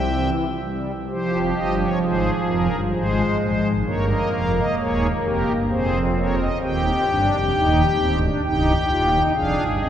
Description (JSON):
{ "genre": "classical, baroque-style 4-part fugue for pipe organ", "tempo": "65 BPM", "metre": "3/4", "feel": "straight", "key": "F minor", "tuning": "A4 = 440 Hz", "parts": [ { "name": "pipe organ, strings celeste", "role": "solo", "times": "0.0-9.9 s", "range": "C1 to G5", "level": "-18 LUFS", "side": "equal", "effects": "none" } ], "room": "wet cathedral reverb, RT60 5.6 s", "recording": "heard from further back in the room", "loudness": "-18 LUFS", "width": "side -10 dB against mid", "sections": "0.0-1.1 A section; 1.1-9.9 B section", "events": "none", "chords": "0.0 C; 1.1 Fm; 2.9 Abadd9; 3.9 Gdim; 5.7 Fm; 6.6 Cm/Eb; 8.4 Cm; 9.4 Ddim/F" }